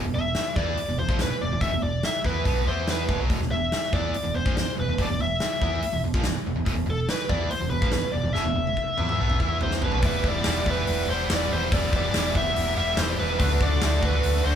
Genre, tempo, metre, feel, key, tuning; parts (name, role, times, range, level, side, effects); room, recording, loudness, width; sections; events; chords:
classic rock; 143 BPM; 4/4; straight; E minor; A4 = 440 Hz
distorted electric guitar; riff; 0.0-14.6 s; E2 to F#4; -29 LUFS; right 2 dB; overdrive
fingered electric bass; bass; 0.0-14.6 s; E1 to E2; -28 LUFS; equal
bluesy overdriven lead guitar; melody; 0.1-14.6 s; A4 to E5; -27 LUFS; equal; distortion
big rock drum kit; drums; 0.3-14.3 s; hi-hat, kick drum, snare drum, toms; -27 LUFS; equal
bright tonewheel organ; sustained chords; 10.0-14.6 s; D4 to D5; -39 LUFS; left 1 dB
light reverb; band playing live in one room; -22 LUFS; side -9 dB against mid
0.0-10.0 A section; 10.0-14.6 B section
drum fill 8.4-10.0
0.0 E5; 10.0 Em7; 13.4 D